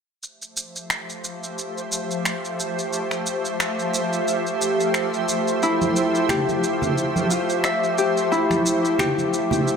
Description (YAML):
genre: sunset chillout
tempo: 89 BPM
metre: 4/4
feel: swing 56% on 16ths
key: F major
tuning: A4 = 440 Hz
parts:
  - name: shimmering ambient pad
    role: sustained chords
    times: 1.1-9.8 s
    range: F3 to E5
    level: -23 LUFS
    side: right 1 dB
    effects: chorus, built-in reverb
  - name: electronic shaker and finger snaps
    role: drums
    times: 0.2-9.8 s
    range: none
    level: -27 LUFS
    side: right 1 dB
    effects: overdrive, studio reverb
  - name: Celtic harp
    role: arpeggios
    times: 5.6-9.8 s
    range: E4 to E5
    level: -22 LUFS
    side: left 3 dB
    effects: ping-pong delay
  - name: congas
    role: percussion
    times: 5.8-9.6 s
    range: none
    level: -26 LUFS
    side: right 2 dB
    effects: none
room: wet plate reverb, RT60 3.4 s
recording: none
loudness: -20 LUFS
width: side -6 dB against mid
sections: 0.2-9.8 A section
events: none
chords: 0.2 Fmaj9